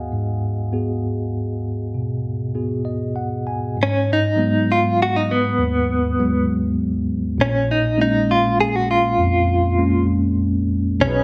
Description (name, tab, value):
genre	acoustic folk-pop ballad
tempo	99 BPM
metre	3/4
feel	straight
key	G# dorian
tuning	A4 = 440 Hz
part	tine electric piano	accompaniment	0.0-11.2 s	A#1 to G#5	-22 LUFS	equal	none
part	direct-recorded clean electric guitar	melody	3.8-11.2 s	B3 to G#4	-21 LUFS	equal	tremolo, plate reverb
part	warm analog pad	sustained chords	11.0-11.2 s	B2 to B4	-26 LUFS	equal	chorus, tremolo
room	moderate large studio reverb, RT60 0.9 s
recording	none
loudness	-20 LUFS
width	mono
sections	0.0-3.8 A section; 3.8-11.2 B section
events	none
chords	0.0 G#m7; 7.4 A#m7